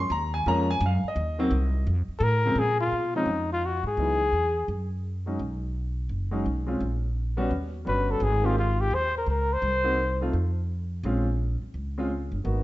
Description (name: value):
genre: jazz, small-group swing and bop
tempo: 170 BPM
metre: 4/4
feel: swing 64% on 8ths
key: Bb minor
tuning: A4 = 440 Hz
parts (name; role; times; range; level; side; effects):
- warm grand piano; accompaniment; 0.0-12.6 s; Db3 to Bb5; -29 LUFS; equal; none
- upright bass; bass; 0.0-12.6 s; F#1 to Bb2; -27 LUFS; equal; none
- mellow trumpet; melody; 2.2-4.9, 7.9-10.2 s; Eb4 to C5; -26 LUFS; left 2 dB; none
room: moderate large studio reverb, RT60 1.2 s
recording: nothing above 7.9 kHz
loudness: -24 LUFS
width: side -16 dB against mid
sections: 0.0-2.6 A section; 2.6-12.6 B section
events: none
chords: 0.0 Gbmaj7; 1.2 Cm7b5; 1.9 F; 2.6 Bb7(no3); 4.0 Dbm11; 4.7 Gbsus2; 5.4 Bsus2; 6.8 Bbm; 7.5 Eb7alt; 8.2 Abadd9; 9.6 Cm7b5; 10.3 N.C.; 11.0 Bbm9